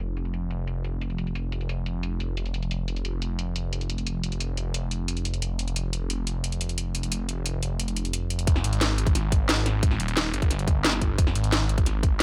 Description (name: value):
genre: dark technical drum and bass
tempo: 177 BPM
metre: 4/4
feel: straight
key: F minor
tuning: A4 = 440 Hz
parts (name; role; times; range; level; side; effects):
- phased detuned saw bass; bass; 0.0-12.2 s; Eb1 to Ab1; -30 LUFS; equal; phaser, tube saturation, sidechain pumping
- drum and bass drum kit; drums; 0.0-12.2 s; hi-hat, snare drum; -31 LUFS; equal; low-pass filter on snare, low-pass filter on hats, low-pass filter on toms, low-pass filter on room
- electronic kick drum; drums; 8.5-12.1 s; none; -24 LUFS; equal; none
room: little or no reverb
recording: none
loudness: -27 LUFS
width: mono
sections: 0.0-8.5 A section; 8.5-12.2 B section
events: drop 8.5-12.2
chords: none